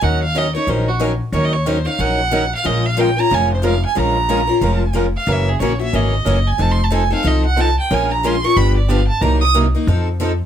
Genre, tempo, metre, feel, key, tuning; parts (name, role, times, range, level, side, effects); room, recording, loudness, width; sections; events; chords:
acoustic string swing (jazz manouche); 183 BPM; 4/4; swing 60% on 8ths; Bb minor; A4 = 440 Hz
rich violin; melody; 0.0-9.5 s; Gb4 to Eb6; -20 LUFS; right 4 dB
picked acoustic archtop guitar; accompaniment; 0.0-10.3 s; C3 to Bb4; -23 LUFS; right 4 dB
picked steel-string acoustic guitar; accompaniment; 0.0-10.3 s; C3 to Bb4; -21 LUFS; left 5 dB
upright bass; bass; 0.0-10.4 s; F1 to F2; -18 LUFS; equal
light reverb; close, detailed microphones; -14 LUFS; side -9 dB against mid
0.0-10.5 A section
violin solo 0.0-10.5
0.0 Ebm7; 2.6 Bbm7; 5.3 Gb7; 6.6 F7; 7.9 Bbm7; 8.6 G7; 9.2 Cm7b5; 9.9 F7